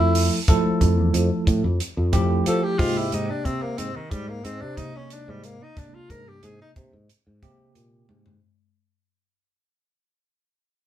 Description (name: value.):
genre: electric jazz fusion.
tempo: 91 BPM.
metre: 4/4.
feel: straight.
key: unclear.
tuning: A4 = 442 Hz.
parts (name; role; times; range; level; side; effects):
breathy tenor saxophone; melody; 0.0-6.7 s; Eb3 to Bb4; -28 LUFS; equal; none.
bell-like tine electric piano; accompaniment; 0.0-8.3 s; C3 to A4; -25 LUFS; right 2 dB; medium stereo tremolo.
sustaining fretless electric bass; bass; 0.0-8.4 s; E2 to F3; -24 LUFS; equal; none.
crisp fusion drum kit; drums; 0.2-8.4 s; hi-hat, kick drum, toms; -23 LUFS; equal; none.
room: moderate studio reverb, RT60 0.6 s.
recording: band playing live in one room.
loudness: -20 LUFS.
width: side -12 dB against mid.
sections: 0.0-8.4 A section.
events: fade-out 0.0-8.4; tenor saxophone solo 0.0-8.4; drum fill 8.1-8.4.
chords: 0.0 Fmaj9; 2.8 Abmaj9.